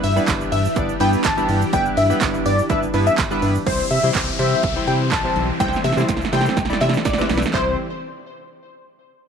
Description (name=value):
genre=dance-pop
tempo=124 BPM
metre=4/4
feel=straight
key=C major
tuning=A4 = 439 Hz
part: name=plucky unison lead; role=melody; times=0.0-7.8 s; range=C5 to A5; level=-23 LUFS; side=left 1 dB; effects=tape echo
part: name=chorused retro synth keys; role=accompaniment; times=0.0-7.8 s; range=G3 to D5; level=-24 LUFS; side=equal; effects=sidechain pumping
part: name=string machine, full ensemble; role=sustained chords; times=0.0-7.8 s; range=E3 to A4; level=-28 LUFS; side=left 1 dB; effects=ensemble chorus, sidechain pumping
part: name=organ-like FM bass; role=bass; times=0.0-7.8 s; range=G1 to C3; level=-22 LUFS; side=left 1 dB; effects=sidechain pumping
part: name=punchy analog drum machine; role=drums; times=0.0-7.7 s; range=handclaps, hi-hat, kick drum, shaker, snare drum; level=-23 LUFS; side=right 4 dB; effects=overdrive
part: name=group handclap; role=percussion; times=0.3-3.3 s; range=none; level=-33 LUFS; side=left 15 dB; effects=none
part: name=downlifter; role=sound effects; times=3.7-7.5 s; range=none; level=-29 LUFS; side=left 2 dB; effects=none
room=light reverb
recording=1960s-style stereo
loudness=-16 LUFS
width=side -7 dB against mid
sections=0.0-3.7 A section; 3.7-7.5 B section; 7.5-9.3 C section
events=drop 0.0-3.7; drum fill 5.6-7.5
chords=0.0 Em7/G; 3.7 C